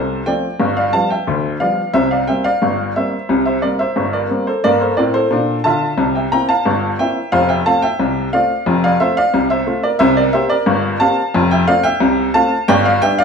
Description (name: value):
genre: ragtime piano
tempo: 89 BPM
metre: 2/4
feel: straight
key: F major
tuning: A4 = 445 Hz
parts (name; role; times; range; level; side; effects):
- clear upright piano; solo; 0.0-13.2 s; F1 to Bb5; -13 LUFS; equal; none
room: wet large studio reverb, RT60 0.8 s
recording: band playing live in one room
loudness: -13 LUFS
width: side -6 dB against mid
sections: 0.0-13.2 A section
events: none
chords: 0.0 F; 0.6 G7; 1.9 C7; 7.3 F; 10.0 C5; 11.3 F; 12.7 G